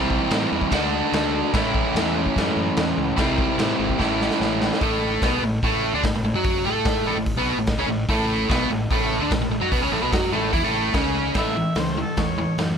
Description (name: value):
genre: garage rock duo or trio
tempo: 146 BPM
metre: 4/4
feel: straight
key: A major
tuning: A4 = 439 Hz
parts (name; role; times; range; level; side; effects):
- biting overdriven guitar; riff; 0.0-12.8 s; A2 to A4; -21 LUFS; right 1 dB; none
- fuzz fingered electric bass; bass; 0.0-12.8 s; G#1 to A2; -29 LUFS; equal; overdrive
- raw garage drum kit; drums; 0.1-12.7 s; crash cymbal, hi-hat, kick drum, snare drum; -25 LUFS; equal; none
- mellow harmonica; melody; 11.4-12.6 s; A4 to E5; -29 LUFS; left 1 dB; overdrive
room: light reverb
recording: none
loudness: -19 LUFS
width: side -7 dB against mid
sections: 0.0-4.8 A section; 4.8-11.4 B section; 11.4-12.8 C section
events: drum fill 4.0-4.8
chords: 0.0 C; 0.7 D; 1.5 A; 3.2 C; 4.0 A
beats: 0.31 0.72 1.13 | 1.53 1.94 2.35 2.76 | 3.17 3.58 3.99 4.40 | 4.81 5.22 5.63 6.04 | 6.45 6.86 7.27 7.67 | 8.09 8.49 8.90 9.31 | 9.72 10.13 10.54 10.95 | 11.36 11.77 12.18 12.59